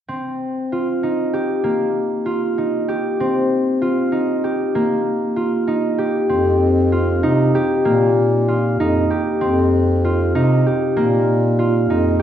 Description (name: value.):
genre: contemporary instrumental, contemporary.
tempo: 193 BPM (eighths).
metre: 5/8.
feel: straight.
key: unclear.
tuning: A4 = 440 Hz.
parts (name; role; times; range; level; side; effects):
concert harp; arpeggios; 0.1-12.2 s; Bb3 to G4; -17 LUFS; equal; none.
mellow bass clarinet; bass; 6.3-12.2 s; F2 to C3; -18 LUFS; equal; none.
room: wet scoring stage reverb, RT60 1.5 s.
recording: recorded in a church or concert hall.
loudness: -16 LUFS.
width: side -9 dB against mid.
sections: 0.1-6.3 A section; 6.3-12.2 B section.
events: none.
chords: 0.1 F5; 1.6 Bbsus4; 6.3 F5.